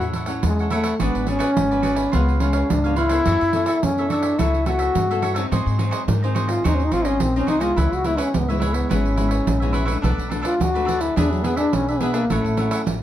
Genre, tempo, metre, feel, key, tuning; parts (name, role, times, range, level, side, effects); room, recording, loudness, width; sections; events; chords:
samba and choro; 106 BPM; 4/4; straight; A4 = 440 Hz
mellow trombone; melody; 0.0-12.9 s; E3 to F#4; -21 LUFS; left 1 dB; plate reverb
cavaquinho; accompaniment; 0.0-12.8 s; D4 to F#5; -28 LUFS; right 2 dB
nylon-string guitar; accompaniment; 0.0-13.0 s; F#2 to A4; -28 LUFS; left 3 dB
upright bass; bass; 0.0-13.0 s; G#1 to G#2; -24 LUFS; equal
pandeiro; percussion; 0.0-13.0 s; -26 LUFS; right 4 dB
light reverb; dark, warm production; -18 LUFS; side -12 dB against mid
0.0-13.0 A section
trombone solo 0.0-13.0
0.0 A6; 1.0 G#m7b5; 2.1 C#7; 3.3 F#m7; 5.5 G#7; 7.8 C#m7; 10.0 Bm7; 11.2 E7; 12.3 A6